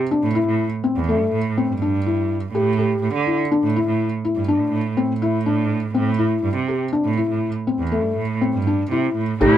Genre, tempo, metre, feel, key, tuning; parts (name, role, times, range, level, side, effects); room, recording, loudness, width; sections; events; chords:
contemporary instrumental, chamber music in an uneven meter; 123 BPM; 7/4; straight; A minor; A4 = 440 Hz
felt-muted upright piano; arpeggios; 0.1-9.6 s; A3 to G4; -21 LUFS; left 3 dB
rich cello; bass; 0.2-9.6 s; E2 to D3; -22 LUFS; right 4 dB
clear clarinet; second line; 9.4-9.6 s; E4; -16 LUFS; left 3 dB
clear studio string section; sustained chords; 9.4-9.6 s; C3 to A3; -22 LUFS; right 1 dB
frame drum; percussion; 9.4-9.6 s; -20 LUFS; right 3 dB
little or no reverb; close, detailed microphones; -18 LUFS; side -11 dB against mid
0.0-9.4 A section
0.0 A7(no3); 2.5 Csus2/A (rootless); 5.9 Am7